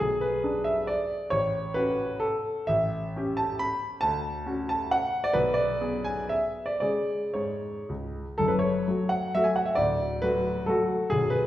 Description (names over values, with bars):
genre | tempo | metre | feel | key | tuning
classical, romantic triple-time dance for piano with dotted rhythms | 104-147 BPM | 3/4 | rubato | F# minor | A4 = 440 Hz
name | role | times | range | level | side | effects
clear grand piano | solo | 0.0-11.5 s | B0 to B5 | -25 LUFS | equal | none
room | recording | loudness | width
wet recital hall reverb, RT60 1.3 s | heard from further back in the room | -25 LUFS | side -13 dB against mid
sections
0.0-8.4 A section; 8.4-11.5 A section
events
none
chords
0.0 G#dim/B; 1.3 F#m/A; 2.7 A7; 4.0 Dmaj7; 5.3 G#dim/B; 6.8 C#5; 8.4 F#m; 9.8 D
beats
| 0.01 0.45 0.89 | 1.32 1.76 2.23 | 2.70 3.15 3.60 | 4.02 4.46 4.92 | 5.34 5.80 6.30 | 6.81 7.36 7.90 | 8.39 8.86 9.33 | 9.77 10.22 10.68 | 11.10